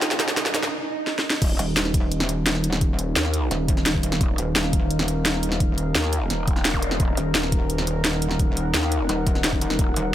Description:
dark technical drum and bass; 172 BPM; 4/4; straight; Eb minor; A4 = 438 Hz
deep dark ambient pad; sustained chords; 0.0-10.1 s; Eb4 to Gb5; -30 LUFS; equal; chorus, built-in reverb, sidechain pumping
analog pluck; arpeggios; 0.0-0.6 s; Eb4; -31 LUFS; right 2 dB; chorus, sidechain pumping, digital delay
growl bass; bass; 0.0-9.9 s; Eb1 to Eb2; -25 LUFS; equal; chorus, overdrive, high-pass filter
drum and bass drum kit; drums; 0.0-10.0 s; crash cymbal, hi-hat, snare drum; -24 LUFS; equal; overdrive
riser, swell and zap; sound effects; 0.0-1.4, 6.7-6.8 s; -32 LUFS; right 3 dB
warm studio string section; texture; 0.0-0.7 s; Db4 to Ab4; -39 LUFS; left 1 dB
electronic kick drum; drums; 1.4-9.9 s; -22 LUFS; equal; overdrive
pulsing pluck wobble bass; bass; 1.6-10.1 s; Eb1; -24 LUFS; equal; chorus
digital ambience; -20 LUFS; side -12 dB against mid
0.0-1.4 A section; 1.4-10.1 B section
build-up 0.0-1.4; drum fill 0.0-0.7, 1.1-1.4; riser 0.0-0.7; break 0.7-1.4; swell 0.7-1.4; drop 1.4-10.1
0.0 Ebm

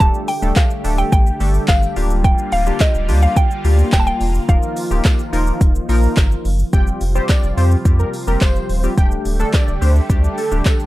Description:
dance-pop; 107 BPM; 4/4; straight; A4 = 439 Hz
mallet-like synth pluck; melody; 0.0-6.1 s; Eb5 to A5; -21 LUFS; equal; chorus
funky polysynth comp; accompaniment; 0.0-10.9 s; F3 to Bb4; -24 LUFS; left 2 dB; chorus, sidechain pumping
filtered supersaw swell; sustained chords; 0.0-10.9 s; C3 to G4; -27 LUFS; equal; sidechain pumping
saturated sub bass; bass; 0.0-10.6 s; D1 to F2; -16 LUFS; equal; sidechain pumping
deep house drum kit; drums; 0.0-10.9 s; handclaps, hi-hat, kick drum, shaker, snare drum; -16 LUFS; equal
tambourine; percussion; 0.6-10.8 s; -40 LUFS; right 4 dB
wide unison lead; melody; 6.7-10.8 s; A4 to G5; -25 LUFS; right 1 dB; sidechain pumping
digital ambience; dry, gritty hardware recording; -14 LUFS; side -17 dB against mid
0.0-6.7 A section; 6.7-10.9 B section
0.0 Dsus4; 2.0 Gm7/D; 4.5 Ebsus2; 6.7 Fsus2; 9.0 Dsus4

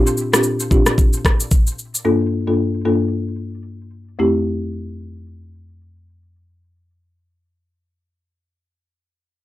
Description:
afrobeats; 112 BPM; 4/4; swing 58% on 16ths; F major; A4 = 440 Hz
folk marimba with medium mallets; accompaniment; 0.0-7.7 s; F2 to A4; -19 LUFS; left 1 dB
afro-pop drum kit; drums; 0.1-2.0 s; kick drum, rim click, shaker; -15 LUFS; equal
little or no reverb; dry, gritty hardware recording, transformer saturation; -16 LUFS; side -16 dB against mid
0.0-4.2 A section; 4.2-8.5 B section
0.0 Bb6; 2.0 Gm9; 4.2 Fmaj7

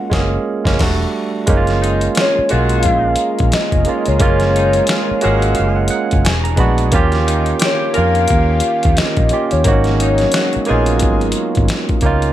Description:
R&B, neo-soul; 88 BPM; 4/4; swing 58% on 16ths; F# major; A4 = 441 Hz
hollow clarinet-like synth lead; melody; 0.0-11.6 s; C#5 to F#5; -18 LUFS; left 2 dB; chorus, slapback echo
barky tine electric piano; accompaniment; 0.0-12.3 s; G3 to B5; -18 LUFS; right 4 dB; overdrive
vintage muted fingered electric bass; bass; 0.1-12.3 s; E1 to E#2; -17 LUFS; left 1 dB
boom bap sampler-style drum kit; drums; 0.1-12.3 s; crash cymbal, finger snaps, hi-hat, kick drum, snare drum; -18 LUFS; left 1 dB
lush unison pad; sustained chords; 1.5-12.3 s; D#3 to A#4; -27 LUFS; left 1 dB; chorus
bright saxophone section; stabs; 1.8-11.3 s; D#3 to A#4; -24 LUFS; left 5 dB
light reverb; -12 LUFS; side -12 dB against mid
0.0-1.5 A section; 1.5-12.3 B section
band accent 0.0-1.5; tine electric piano fill 4.9-6.9
0.0 F#maj9; 0.8 Em11; 1.5 F#maj9; 6.2 E9; 6.9 D#9; 9.7 G#9sus4

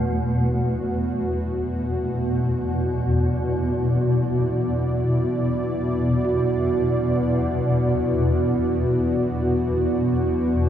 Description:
dark ambient drone; free time; A4 = 438 Hz
dark analog pad; sustained chords; 0.0-10.7 s; B3 to E5; -24 LUFS; equal; chorus
gamelan-type bronze metallophone; arpeggios; 0.0-10.7 s; A3 to F#4; -30 LUFS; right 4 dB; analog delay
swarming drone; drone; 0.0-10.7 s; E2 to B2; -22 LUFS; left 1 dB; built-in reverb
wet plate reverb, RT60 2.4 s; echo-heavy mix; -20 LUFS; side -10 dB against mid
0.0-10.7 A section
filter sweep on synth drone 0.0-10.7
0.0 Esus2

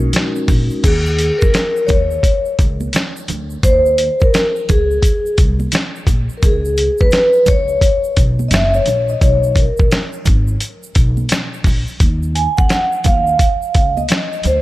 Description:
hip hop, jazz-hop; 86 BPM; 4/4; swing 62% on 16ths; Eb minor; A4 = 440 Hz
vibraphone with soft mallets; accompaniment; 0.0-14.6 s; G#3 to Ab5; -16 LUFS; equal
upright bass; bass; 0.0-14.6 s; Gb1 to F2; -19 LUFS; equal
boom bap sampler-style drum kit; drums; 0.1-14.6 s; crash cymbal, hi-hat, kick drum, snare drum; -15 LUFS; equal
congas and egg shaker; percussion; 0.1-14.6 s; -29 LUFS; right 5 dB
small room ambience; lossy compression artefacts; -12 LUFS; side -17 dB against mid
0.8-14.6 A section
vibraphone solo 0.8-14.6
0.0 Bmaj13 (rootless); 0.8 Eb5; 3.6 Abadd9; 6.4 Db5; 8.5 Gb; 9.2 Abmadd9; 12.0 Ebsus2

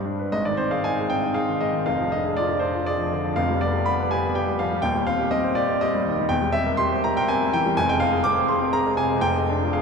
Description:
classical, romantic character piece for solo piano; 102-127 BPM; 3/4; rubato; C minor; A4 = 440 Hz
clear baby grand piano; solo; 0.0-9.8 s; Eb1 to D6; -20 LUFS; equal
wet cathedral reverb, RT60 5.0 s; dark, warm production; -20 LUFS; side -5 dB against mid
0.3-9.8 A section
0.3 Ab; 1.9 Ddim/F; 3.4 G7/F; 4.8 Cm/Eb; 6.3 C7/E; 7.8 Fm; 9.2 Ddim/F

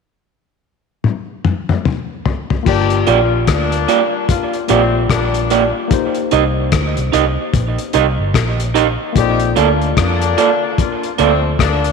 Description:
lovers rock reggae; 74 BPM; 4/4; swing 60% on 16ths; A4 = 437 Hz
cloth-damped thuddy drum kit; drums; 1.0-11.9 s; crash cymbal, hi-hat, kick drum, rim click, toms; -18 LUFS; left 4 dB
barky tine electric piano; accompaniment; 2.6-11.9 s; Bb3 to D5; -21 LUFS; left 8 dB; overdrive
clear horn section; second line; 2.7-11.9 s; D3 to G4; -20 LUFS; left 9 dB
vintage muted fingered electric bass; bass; 2.7-11.9 s; G1 to F2; -18 LUFS; right 1 dB
electric guitar through a small old amp; stabs; 3.1-11.3 s; Bb3 to Eb5; -17 LUFS; right 12 dB; tape echo
moderate echo chamber reverb, RT60 2.4 s; 1960s-style stereo with parts hard left and right; -13 LUFS; side -5 dB against mid
0.0-2.7 A section; 2.7-11.9 B section
drum fill 1.0-2.7
0.0 N.C.; 2.7 Gm7; 5.9 Cm7; 9.2 Bbmaj7

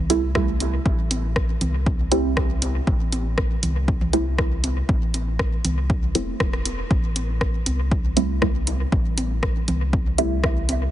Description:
dub techno; 119 BPM; 4/4; straight; A minor; A4 = 445 Hz
soft dub sub bass; bass; 0.0-10.9 s; E1 to C2; -25 LUFS; equal; sidechain pumping
filtered dub chord stab; stabs; 0.1-10.4 s; G3 to E4; -26 LUFS; right 3 dB; phaser, sidechain pumping, dub echo
punchy analog drum machine; drums; 0.1-10.8 s; hi-hat, rim click; -28 LUFS; equal; overdrive, dub echo
electronic toms; percussion; 0.1-10.8 s; -32 LUFS; equal; sidechain pumping on toms, dub echo
electronic kick drum; drums; 0.4-10.5 s; -23 LUFS; equal; overdrive
digital ambience; heavily compressed radio sound, multiband compression, nothing above 10.6 kHz; -20 LUFS; side -12 dB against mid
0.0-6.9 A section; 6.9-10.9 A section
filter sweep on synth stab 0.0-6.9; band accent 6.4
0.0 Am7

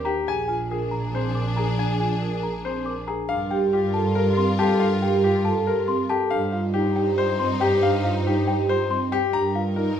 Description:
classical, minimalist pattern music; 278 BPM (eighths); 7/8; straight; Bb mixolydian, G minor from 3.3 s; A4 = 440 Hz
small celesta; arpeggios; 0.0-9.8 s; F5 to D6; -30 LUFS; left 4 dB
vibraphone with soft mallets; arpeggios; 0.0-10.0 s; C4 to Bb4; -26 LUFS; right 5 dB
rich chamber double bass section; bass; 0.0-10.0 s; Bb1 to G2; -26 LUFS; right 2 dB
clear concert grand piano; melody; 0.1-10.0 s; G4 to Bb5; -26 LUFS; left 8 dB
rich symphonic string section; sustained chords; 0.3-10.0 s; D4 to C5; -33 LUFS; left 4 dB
moderate recital hall reverb, RT60 1.3 s; -20 LUFS; side -9 dB against mid
0.0-3.3 A section; 3.3-10.0 B section
0.3 Bb7; 3.3 Gm9; 6.3 Eb69/G; 9.3 F7sus4/G

